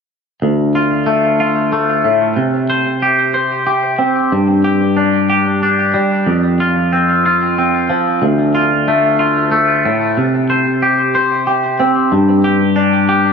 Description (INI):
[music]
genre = rock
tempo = 62 BPM (dotted quarters)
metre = 6/8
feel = straight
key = D minor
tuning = A4 = 440 Hz
[part]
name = twangy electric guitar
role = arpeggios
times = 0.4-13.3 s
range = D2 to C5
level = -12 LUFS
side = equal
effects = phaser, tape echo
[sound]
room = moderate scoring stage reverb, RT60 1.8 s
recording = dark, warm production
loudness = -12 LUFS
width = side -5 dB against mid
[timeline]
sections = 0.4-13.3 A section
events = none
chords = 0.4 Dm; 2.4 C5; 4.3 G5; 6.3 F5; 8.2 Dm; 10.2 C5; 12.1 G5